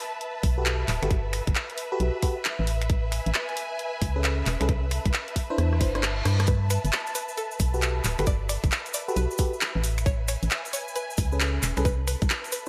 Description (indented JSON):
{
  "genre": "UK garage, two-step garage",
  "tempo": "134 BPM",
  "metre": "4/4",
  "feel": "swing 64% on 16ths",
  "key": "G major",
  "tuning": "A4 = 440 Hz",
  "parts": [
    { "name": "warm symphonic string section", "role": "texture", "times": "0.0-12.7 s", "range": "B4 to A5", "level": "-38 LUFS", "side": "equal", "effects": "sidechain pumping" },
    { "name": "garage drum kit", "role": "drums", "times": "0.2-12.6 s", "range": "finger snaps, handclaps, hi-hat, rim click", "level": "-32 LUFS", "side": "equal", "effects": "gated reverb" },
    { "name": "organ-like FM bass", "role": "bass", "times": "0.4-12.3 s", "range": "D1 to G2", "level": "-28 LUFS", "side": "equal", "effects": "none" },
    { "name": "electronic kick drum", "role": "drums", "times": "0.4-12.3 s", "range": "none", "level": "-28 LUFS", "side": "equal", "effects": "none" },
    { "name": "FM electric piano", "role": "stabs", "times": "0.6-11.8 s", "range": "C#4 to C5", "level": "-34 LUFS", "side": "equal", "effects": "chorus, digital delay" },
    { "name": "reverse cymbal", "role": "sound effects", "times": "5.8-6.5 s", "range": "none", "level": "-40 LUFS", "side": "equal", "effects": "none" },
    { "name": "string-like resonator pluck", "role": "melody", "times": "6.5-12.7 s", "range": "A4 to D5", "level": "-38 LUFS", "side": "equal", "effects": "chorus, digital delay" },
    { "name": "cabasa", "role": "percussion", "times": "6.5-12.7 s", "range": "none", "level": "-38 LUFS", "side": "equal", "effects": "none" }
  ],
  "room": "light reverb",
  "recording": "bright 1980s-style digital production",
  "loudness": "-26 LUFS",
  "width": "mono",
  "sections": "0.0-12.7 A section",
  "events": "drum fill 5.6-6.5; reverse cymbal 5.8-6.5",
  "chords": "0.0 Gmaj9; 2.7 Amaj9; 4.7 Cmaj9; 6.5 Gmaj9; 9.8 Amaj9; 11.9 Cmaj7",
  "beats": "0.21 0.66 | 1.10 1.55 2.00 2.45 | 2.90 3.34 3.79 4.24 | 4.69 5.13 5.58 6.03 | 6.48 6.93 7.37 7.82 | 8.27 8.72 9.16 9.61 | 10.06 10.51 10.96 11.40 | 11.85 12.30"
}